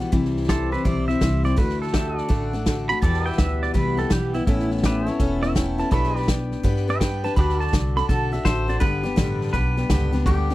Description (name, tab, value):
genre	honky-tonk and classic country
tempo	166 BPM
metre	4/4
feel	swing 65% on 8ths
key	G major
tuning	A4 = 440 Hz
part	picked steel-string acoustic guitar	accompaniment	0.0-10.5 s	E2 to B4	-25 LUFS	left 2 dB	none
part	pedal steel guitar	sustained chords	0.0-8.8 s	F#4 to E5	-33 LUFS	left 2 dB	wide subtle chorus
part	natural country drum kit	drums	0.0-10.5 s	hi-hat, kick drum, snare drum	-24 LUFS	equal	none
part	upright bass	bass	0.1-10.5 s	E1 to G2	-25 LUFS	right 1 dB	none
part	pedal steel guitar	second line	0.5-8.8 s	E4 to B5	-28 LUFS	right 4 dB	none
part	twangy electric guitar	melody	8.4-10.5 s	G4 to C5	-28 LUFS	left 2 dB	none
room	little or no reverb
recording	dry, close 1970s-style studio recording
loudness	-19 LUFS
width	side -16 dB against mid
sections	0.0-8.8 A section; 8.8-10.5 B section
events	pedal steel guitar solo 0.0-8.8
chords	0.1 C; 1.6 D; 3.0 Em; 4.5 Aadd9; 5.9 G/B; 7.4 D; 8.8 G